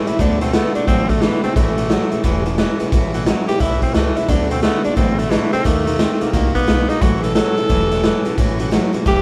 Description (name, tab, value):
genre	rockabilly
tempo	176 BPM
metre	4/4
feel	swing 64% on 8ths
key	A major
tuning	A4 = 440 Hz
part	raspy tenor saxophone	melody	0.0-9.2 s	E3 to A4	-23 LUFS	equal	none
part	picked steel-string acoustic guitar	accompaniment	0.0-9.2 s	A2 to A4	-28 LUFS	equal	none
part	twangy electric guitar	riff	0.0-9.2 s	A2 to B#3	-25 LUFS	equal	spring reverb
part	upright bass	bass	0.1-9.2 s	E1 to D#2	-25 LUFS	equal	none
part	raw garage drum kit	drums	0.1-9.2 s	hi-hat, kick drum, snare drum	-20 LUFS	equal	none
room	light reverb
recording	band playing live in one room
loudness	-17 LUFS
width	mono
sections	0.0-9.2 A section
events	none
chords	0.2 D6; 1.6 A6; 4.3 D6; 5.7 D#dim7; 7.0 A6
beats	| 0.19 0.54 0.88 1.22 | 1.56 1.90 2.24 2.58 | 2.92 3.27 3.61 3.95 | 4.29 4.63 4.97 5.31 | 5.65 6.00 6.34 6.68 | 7.02 7.36 7.70 8.04 | 8.38 8.72 9.07